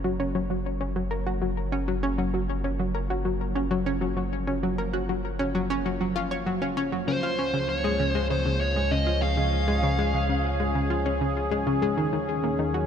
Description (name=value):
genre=ambient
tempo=98 BPM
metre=4/4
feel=straight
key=Gb major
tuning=A4 = 440 Hz
part: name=sweeping resonant pad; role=sustained chords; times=0.0-12.9 s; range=Eb3 to Db5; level=-32 LUFS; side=equal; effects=chorus
part: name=analog pluck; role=riff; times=0.0-12.8 s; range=Db3 to Db5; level=-27 LUFS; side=left 1 dB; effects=chorus, ping-pong delay
part: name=round analog bass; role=bass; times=0.0-12.9 s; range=Gb1 to Eb2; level=-30 LUFS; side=equal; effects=none
part: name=dark smooth lead guitar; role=melody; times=7.1-11.0 s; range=C5 to F5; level=-29 LUFS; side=right 1 dB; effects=overdrive, ping-pong delay
room=wet cathedral reverb, RT60 6.7 s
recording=in a vast, echoing space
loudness=-24 LUFS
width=side -8 dB against mid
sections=0.0-12.9 A section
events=fade-in on analog synth pad 0.0-12.9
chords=0.0 Gbmaj7; 7.1 Db; 12.0 Ebm7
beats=0.35 0.96 1.57 | 2.18 2.79 3.41 4.02 | 4.63 5.24 5.86 6.47 | 7.08 7.69 8.30 8.92 | 9.53 10.14 10.75 11.37 | 11.98 12.59